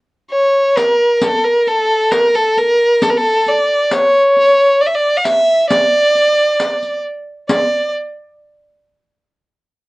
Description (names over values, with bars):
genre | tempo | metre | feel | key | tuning
Arabic maqam ensemble | 134 BPM (eighths) | 10/8 | straight | D maqam suznak | A4 = 441 Hz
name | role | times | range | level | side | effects
rich violin | melody | 0.3-7.9 s | A4 to F#5-50c | -11 LUFS | equal | none
riq | percussion | 0.8-7.9 s | none | -21 LUFS | left 1 dB | none
room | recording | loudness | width
moderate small room reverb, RT60 0.5 s | worn, warbling old tape, cassette tape, warbly pitch drift | -11 LUFS | side -21 dB against mid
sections
0.0-7.5 A section; 7.5-9.9 B section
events
none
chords
none